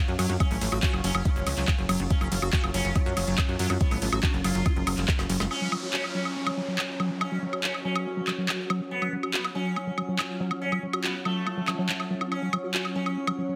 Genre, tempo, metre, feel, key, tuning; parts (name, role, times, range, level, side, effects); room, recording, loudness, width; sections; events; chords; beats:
psychedelic trance; 141 BPM; 4/4; straight; A4 = 438 Hz
sitar; melody; 0.0-13.6 s; A3 to E#4; -38 LUFS; equal; phaser, sidechain pumping, digital delay
swarming drone; sustained chords; 0.1-13.6 s; F#3 to F#4; -40 LUFS; equal; built-in reverb, sidechain pumping
warbly tape-like pad; texture; 0.0-13.6 s; C#4 to E#5; -40 LUFS; equal; chorus, built-in reverb, phaser, sidechain pumping
plucky analog bass; bass; 0.1-5.5 s; F#1 to F#2; -31 LUFS; equal
garage drum kit; drums; 0.1-13.4 s; handclaps, hi-hat, ride cymbal, snare drum, woodblock; -33 LUFS; equal; overdrive, studio reverb
liquid acid bass; riff; 0.2-13.6 s; F#3 to F#4; -35 LUFS; equal; chorus, sidechain pumping, delay
electronic kick drum; drums; 0.4-5.2 s; -27 LUFS; equal; overdrive, studio reverb
downlifter; sound effects; 5.5-8.9 s; -42 LUFS; equal
light reverb, digital ambience; heavily compressed radio sound, multiband compression; -27 LUFS; mono
0.0-5.5 A section; 5.5-13.6 B section
drop 0.0-5.5; drum fill 5.1-5.5
0.0 F#5
| 0.40 0.83 1.25 1.68 | 2.10 2.53 2.96 3.38 | 3.81 4.23 4.66 5.08 | 5.51 5.93 6.36 6.79 | 7.21 7.64 8.06 8.49 | 8.91 9.34 9.76 10.19 | 10.62 11.04 11.47 11.89 | 12.32 12.74 13.17